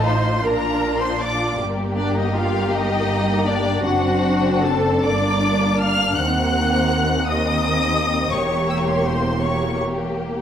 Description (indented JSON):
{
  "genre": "classical, slow romantic movement for string orchestra",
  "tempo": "53 BPM (dotted quarters)",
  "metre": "6/8",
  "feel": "rubato",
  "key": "unclear",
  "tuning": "A4 = 440 Hz",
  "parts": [
    { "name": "rich studio violin section", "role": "melody", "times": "0.0-9.8 s", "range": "D5 to Gb6", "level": "-25 LUFS", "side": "left 4 dB", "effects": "none" },
    { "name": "warm symphonic violin section", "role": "second line", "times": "0.0-10.4 s", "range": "Bb3 to G4", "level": "-23 LUFS", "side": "left 2 dB", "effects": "none" },
    { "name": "clear symphonic viola section", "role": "accompaniment", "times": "0.0-9.8 s", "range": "D4 to Gb5", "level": "-24 LUFS", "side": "right 1 dB", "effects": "none" },
    { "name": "rich symphonic cello section", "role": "bass", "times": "0.0-10.4 s", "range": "Eb2 to Bb2", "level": "-25 LUFS", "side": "right 2 dB", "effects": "none" },
    { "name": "rich symphonic double bass section", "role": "bass", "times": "0.0-10.4 s", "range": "E1 to Eb2", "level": "-26 LUFS", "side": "right 2 dB", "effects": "none" }
  ],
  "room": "wet scoring stage reverb, RT60 1.4 s",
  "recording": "none",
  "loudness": "-17 LUFS",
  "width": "side -9 dB against mid",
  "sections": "0.0-10.4 A section",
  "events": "none",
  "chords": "0.4 Bb; 1.6 Gm; 3.8 D7/F#; 5.0 Gm; 6.2 Cm7b5/Eb; 8.3 Edim7"
}